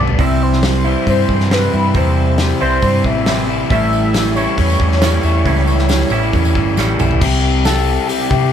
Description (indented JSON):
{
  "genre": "indie rock",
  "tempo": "137 BPM",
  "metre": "4/4",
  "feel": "straight",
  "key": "unclear",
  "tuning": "A4 = 439 Hz",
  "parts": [
    { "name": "octave-doubled lead", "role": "melody", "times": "0.0-8.5 s", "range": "G4 to E5", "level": "-20 LUFS", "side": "left 1 dB", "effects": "chorus, phaser" },
    { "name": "overdriven electric guitar", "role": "riff", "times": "0.0-8.5 s", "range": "A2 to G4", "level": "-19 LUFS", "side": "left 7 dB", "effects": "none" },
    { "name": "twangy electric guitar", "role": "riff", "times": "0.0-7.2 s", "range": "A2 to B4", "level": "-20 LUFS", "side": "right 8 dB", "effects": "none" },
    { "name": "hollow-body short-scale fingered electric bass", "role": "bass", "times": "0.0-8.5 s", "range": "G1 to C3", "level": "-16 LUFS", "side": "equal", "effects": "none" },
    { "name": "loose indie drum kit", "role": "drums", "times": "0.1-8.4 s", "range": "crash cymbal, hi-hat, kick drum, snare drum, toms", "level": "-20 LUFS", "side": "equal", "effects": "none" },
    { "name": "tambourine", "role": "percussion", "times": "3.9-7.8 s", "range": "none", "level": "-33 LUFS", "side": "right 5 dB", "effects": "none" }
  ],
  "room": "moderate large studio reverb, RT60 1.4 s",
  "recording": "band playing live in one room",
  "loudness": "-12 LUFS",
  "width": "side -9 dB against mid",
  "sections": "0.2-7.2 A section; 7.2-8.5 B section",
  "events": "drum fill 0.0, 6.8-7.2",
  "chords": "0.2 C; 3.7 A7; 7.2 C"
}